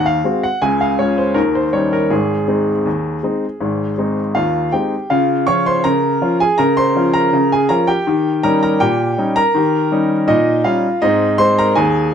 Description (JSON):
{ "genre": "ragtime piano", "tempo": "81 BPM", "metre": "2/4", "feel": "straight", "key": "Ab major", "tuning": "A4 = 439 Hz", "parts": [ { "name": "clear baby grand piano", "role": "solo", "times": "0.0-12.1 s", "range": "Ab1 to Db6", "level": "-13 LUFS", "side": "equal", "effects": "none" } ], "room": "light reverb", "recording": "close, detailed microphones", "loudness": "-13 LUFS", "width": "side -8 dB against mid", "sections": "0.0-5.1 A section; 5.1-12.1 B section", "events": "none", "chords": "0.0 Ab7; 0.6 Db; 1.4 Eb7; 2.1 Ab; 5.1 Bbm/Db; 8.1 Eb7; 11.0 Ab" }